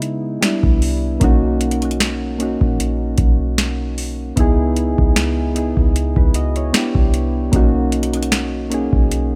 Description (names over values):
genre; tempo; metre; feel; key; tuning
contemporary R&B; 76 BPM; 4/4; swing 54% on 16ths; B major; A4 = 438 Hz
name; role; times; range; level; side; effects
soft electric-piano-like synth keys; accompaniment; 0.0-9.4 s; G3 to D#5; -22 LUFS; equal; chorus
clean 808-style bass; bass; 0.0-9.4 s; A#1 to C#3; -23 LUFS; equal; none
booming analog drum machine; drums; 0.0-9.3 s; hi-hat, kick drum, snare drum; -19 LUFS; equal; none
room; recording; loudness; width
little or no reverb; none; -17 LUFS; mono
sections
0.0-9.4 A section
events
none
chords
0.4 Cmaj7; 1.2 Bmaj7; 4.4 C#m7; 6.7 Cmaj7; 7.5 Bmaj7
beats
0.42 | 1.21 2.00 2.79 3.58 | 4.37 5.16 5.95 6.74 | 7.53 8.32 9.11